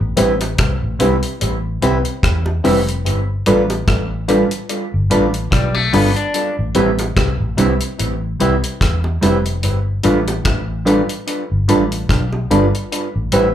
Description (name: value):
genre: lovers rock reggae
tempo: 73 BPM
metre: 4/4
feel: swing 56% on 16ths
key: A minor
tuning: A4 = 440 Hz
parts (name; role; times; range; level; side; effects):
- vintage muted fingered electric bass; bass; 0.0-13.5 s; F1 to E2; -19 LUFS; equal; none
- FM electric piano with auto-pan; accompaniment; 0.2-13.5 s; C4 to B4; -19 LUFS; left 2 dB; phaser, tape echo, plate reverb, slapback echo
- mellow electric guitar; stabs; 0.2-13.5 s; G3 to B4; -20 LUFS; right 4 dB; lush chorus, tape echo, plate reverb, slapback echo
- deep reggae drum kit; drums; 0.2-13.5 s; hi-hat, kick drum, rim click; -20 LUFS; equal; none
- bongos; percussion; 0.4-12.7 s; none; -25 LUFS; right 2 dB; slapback echo
- electric guitar at the edge of break-up; arpeggios; 5.5-6.6 s; G3 to D4; -19 LUFS; left 4 dB; plate reverb, slapback echo
room: moderate club reverb, RT60 0.6 s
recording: live gig heard through the venue's PA, club reverb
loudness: -14 LUFS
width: side -10 dB against mid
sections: 0.0-13.5 A section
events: none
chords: 0.0 Am9; 3.1 G7; 6.3 Am9; 9.6 G7; 12.9 Am9